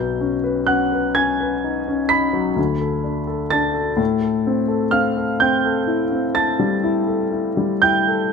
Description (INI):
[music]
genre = classical, impressionist solo piano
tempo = 42 BPM (dotted quarters)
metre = 9/8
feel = rubato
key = unclear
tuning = A4 = 440 Hz
[part]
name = warm grand piano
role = solo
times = 0.0-8.3 s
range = B1 to B6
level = -17 LUFS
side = left 1 dB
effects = none
[sound]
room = light reverb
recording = close, detailed microphones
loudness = -17 LUFS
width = side -5 dB against mid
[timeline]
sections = 0.0-8.3 A section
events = none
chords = 0.0 B69; 2.6 D5; 4.0 Am7